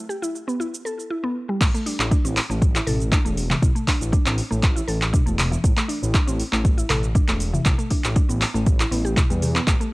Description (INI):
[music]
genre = afro house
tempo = 119 BPM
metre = 4/4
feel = straight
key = unclear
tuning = A4 = 440 Hz
[part]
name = mallet-like synth pluck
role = arpeggios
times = 0.1-9.9 s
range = E3 to A4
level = -28 LUFS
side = equal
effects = chorus, sidechain pumping, analog delay
[part]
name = afro-pop drum kit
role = drums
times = 0.1-9.9 s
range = crash cymbal, handclaps, hi-hat, shaker, toms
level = -25 LUFS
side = equal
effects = none
[part]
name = dark detuned saw bass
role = bass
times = 1.6-9.8 s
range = E1 to E2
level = -25 LUFS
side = equal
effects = tube saturation, sidechain pumping
[part]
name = electronic kick drum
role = drums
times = 1.6-9.8 s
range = none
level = -19 LUFS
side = equal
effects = overdrive
[sound]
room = digital ambience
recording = dry, gritty hardware recording, cassette tape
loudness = -19 LUFS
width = side -22 dB against mid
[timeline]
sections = 0.0-1.6 A section; 1.6-9.9 B section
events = drop 1.6-9.9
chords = 0.0 Em; 1.6 A5; 7.7 Em7/A